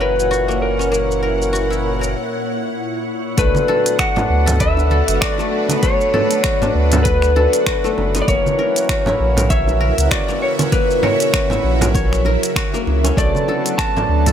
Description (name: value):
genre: organic downtempo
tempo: 98 BPM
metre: 4/4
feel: swing 57% on 16ths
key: B minor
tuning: A4 = 440 Hz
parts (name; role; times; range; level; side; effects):
- electric slide guitar; melody; 0.0-14.3 s; A#4 to A5; -20 LUFS; left 1 dB; ping-pong delay
- pedal harmonium; accompaniment; 0.0-14.3 s; A#2 to A4; -25 LUFS; right 2 dB; sidechain pumping, ping-pong delay
- bowed-like drone; sustained chords; 0.0-14.3 s; A#2 to F#5; -25 LUFS; right 1 dB; built-in reverb, phaser, sidechain pumping
- guzheng; arpeggios; 0.0-14.3 s; A3 to C#5; -23 LUFS; left 3 dB; ping-pong delay
- warm sub bass; bass; 0.0-14.3 s; F#1 to D2; -18 LUFS; equal; sidechain pumping
- organic electronic drum kit; drums; 0.2-14.3 s; finger snaps, hi-hat, shaker; -24 LUFS; equal; none
- electronic kick drum; drums; 3.4-13.9 s; none; -20 LUFS; equal; none
- congas and bongos; percussion; 3.5-14.3 s; none; -23 LUFS; right 2 dB; none
room: light reverb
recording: none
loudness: -14 LUFS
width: side -9 dB against mid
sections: 0.0-3.4 A section; 3.4-14.3 B section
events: break 2.2-3.4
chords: 0.0 F#7; 3.4 Bm7; 8.3 F#7; 13.2 Bm7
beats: 0.32 | 0.93 1.54 2.15 2.77 | 3.38 3.99 4.60 5.22 | 5.83 6.44 7.05 7.67 | 8.28 8.89 9.50 10.11 | 10.73 11.34 11.95 12.56 | 13.18 13.79